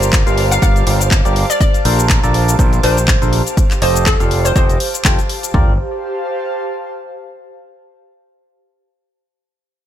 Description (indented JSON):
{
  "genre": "piano house",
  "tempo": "122 BPM",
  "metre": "4/4",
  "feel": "swing 56% on 16ths",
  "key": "G minor",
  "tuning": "A4 = 440 Hz",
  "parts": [
    { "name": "hollow square pluck", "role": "melody", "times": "0.0-4.6 s", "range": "A4 to F5", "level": "-21 LUFS", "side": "equal", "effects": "lush chorus, vintage 12-bit sampler grit, digital delay" },
    { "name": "string machine, violins", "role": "sustained chords", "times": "0.0-5.6 s", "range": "F5 to D6", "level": "-31 LUFS", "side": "equal", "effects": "ensemble chorus, vintage 12-bit sampler grit, sidechain pumping" },
    { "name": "percussive organ stab", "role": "riff", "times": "0.0-5.7 s", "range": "Bb2 to G5", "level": "-20 LUFS", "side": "right 1 dB", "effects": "chorus, sidechain pumping, digital delay" },
    { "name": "growling fingered electric bass", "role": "bass", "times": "0.0-5.8 s", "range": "F1 to Bb1", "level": "-17 LUFS", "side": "equal", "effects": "overdrive, sidechain pumping" },
    { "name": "house drum kit", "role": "drums", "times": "0.0-5.5 s", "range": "handclaps, hi-hat, shaker", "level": "-20 LUFS", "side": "left 2 dB", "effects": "small room ambience" },
    { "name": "airy breathy pad", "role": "texture", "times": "0.0-7.5 s", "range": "G4 to A5", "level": "-24 LUFS", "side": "right 1 dB", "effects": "chorus, sidechain pumping" },
    { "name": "house drum kit", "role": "drums", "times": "0.1-5.7 s", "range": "kick drum, toms", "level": "-14 LUFS", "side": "equal", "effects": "small room ambience" }
  ],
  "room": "light reverb, digital ambience",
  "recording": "none",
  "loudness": "-12 LUFS",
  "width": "side -11 dB against mid",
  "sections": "0.0-5.5 A section; 5.5-7.5 B section",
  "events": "drop 0.0-5.5",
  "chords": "0.0 Gm7; 1.6 Bbmaj9; 3.6 F9; 5.5 Gm7"
}